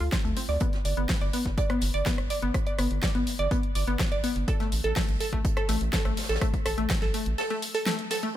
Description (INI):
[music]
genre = progressive house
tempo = 124 BPM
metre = 4/4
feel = straight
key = unclear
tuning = A4 = 440 Hz
[part]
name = glassy wavetable pluck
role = arpeggios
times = 0.0-8.3 s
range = A3 to D5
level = -30 LUFS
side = equal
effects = chorus, sidechain pumping, digital delay
[part]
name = round analog bass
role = bass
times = 0.0-7.3 s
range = G1 to D2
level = -29 LUFS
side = equal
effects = sidechain pumping
[part]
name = electronic kick drum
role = drums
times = 0.1-7.0 s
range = none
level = -28 LUFS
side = equal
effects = none
[part]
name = jazz brush drum kit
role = drums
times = 0.1-8.2 s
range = hi-hat, snare drum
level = -40 LUFS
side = right 2 dB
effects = high-pass filter on hats, high-pass filter on snare, high-pass filter on room
[part]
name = pop drum kit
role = drums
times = 0.1-8.3 s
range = hi-hat, rim click, snare drum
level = -33 LUFS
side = left 1 dB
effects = sidechain pumping on hats
[sound]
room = light reverb, small room reverb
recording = none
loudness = -24 LUFS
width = side -12 dB against mid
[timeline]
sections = 0.0-8.3 A section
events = filter sweep on synth arpeggio sound 0.0-8.3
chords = 0.0 D7(no3); 0.6 G; 4.5 N.C.